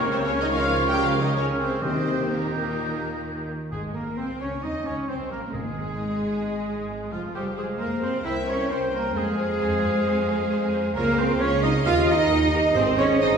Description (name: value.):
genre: quick classical-period movement for symphony orchestra.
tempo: 132 BPM.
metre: 4/4.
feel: straight.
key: unclear.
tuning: A4 = 440 Hz.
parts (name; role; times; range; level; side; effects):
warm studio violin section; melody; 0.0-13.3 s; F4 to G5; -35 LUFS; left 2 dB; none.
clear oboe; second line; 0.0-13.3 s; F4 to F5; -33 LUFS; right 3 dB; none.
hollow flute section; second line; 0.0-3.5 s; F6 to G6; -31 LUFS; left 1 dB; none.
mellow clarinet; second line; 0.0-13.4 s; F4 to F5; -34 LUFS; right 1 dB; none.
warm studio viola section; accompaniment; 0.0-13.3 s; F3 to Db5; -35 LUFS; equal; none.
dark French horn section; sustained chords; 0.0-13.4 s; Bb2 to Db5; -30 LUFS; left 2 dB; none.
clear trumpet; stabs; 0.0-13.4 s; Ab3 to G5; -32 LUFS; right 3 dB; none.
rich studio cello section; bass; 0.0-13.4 s; Db3 to F4; -27 LUFS; right 1 dB; none.
warm studio double bass section; bass; 0.0-13.4 s; F1 to F2; -31 LUFS; right 2 dB; none.
rich studio violin section; second line; 0.1-13.3 s; Bb3 to F5; -34 LUFS; left 1 dB; none.
timpani; percussion; 1.8-6.2, 12.8-13.4 s; Ab2 to Eb3; -34 LUFS; left 1 dB; none.
room: wet recital hall reverb, RT60 1.6 s.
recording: recorded in a church or concert hall.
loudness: -22 LUFS.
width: side -6 dB against mid.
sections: 0.0-3.7 A section; 3.7-13.4 B section.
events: none.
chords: 0.0 Bbm/Db; 1.8 Eb; 3.7 Ab; 4.6 Eb5; 5.5 Fm; 8.3 C7; 9.2 Fm; 11.0 Db; 11.9 Eb; 12.8 Ab.